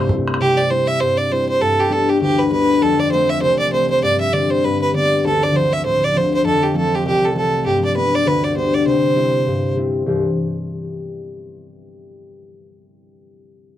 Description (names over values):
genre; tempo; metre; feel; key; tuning
celtic folk; 199 BPM; 4/4; swing 57% on 8ths; C major; A4 = 440 Hz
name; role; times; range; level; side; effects
clear fiddle; melody; 0.0-9.7 s; G4 to E5; -17 LUFS; right 2 dB; none
concert harp; accompaniment; 0.0-11.4 s; C2 to G4; -19 LUFS; left 2 dB; none
room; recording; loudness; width
light reverb; dry, close 1970s-style studio recording; -15 LUFS; side -12 dB against mid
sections
0.4-10.1 A section; 10.1-11.3 B section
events
none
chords
0.4 C; 1.6 G; 2.8 F; 4.0 Gsus4; 4.6 G; 5.2 Dm7; 6.4 F; 7.6 G; 8.9 C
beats
0.10 | 0.40 0.70 1.00 1.30 | 1.61 1.91 2.21 2.51 | 2.81 3.12 3.42 3.72 | 4.02 4.33 4.63 4.93 | 5.23 5.54 5.84 6.14 | 6.44 6.74 7.04 7.35 | 7.65 7.95 8.25 8.55 | 8.86 9.16 9.46 9.76 | 10.06 10.36 10.66 10.97